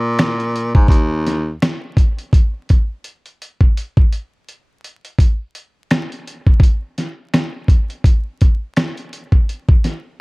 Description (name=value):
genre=lo-fi hip hop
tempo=84 BPM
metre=4/4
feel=swing 57% on 16ths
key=unclear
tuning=A4 = 440 Hz
part: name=warm baritone saxophone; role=bass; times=0.0-1.5 s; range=Eb2 to Bb2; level=-18 LUFS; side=equal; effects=none
part: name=dusty soul sampler-style drum kit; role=drums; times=0.2-10.0 s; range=finger snaps, hi-hat, kick drum, snare drum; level=-13 LUFS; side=equal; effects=none
room=little or no reverb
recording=dark, warm production, vinyl crackle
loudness=-14 LUFS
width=side -29 dB against mid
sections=0.0-2.3 A section; 2.3-10.2 B section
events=none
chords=none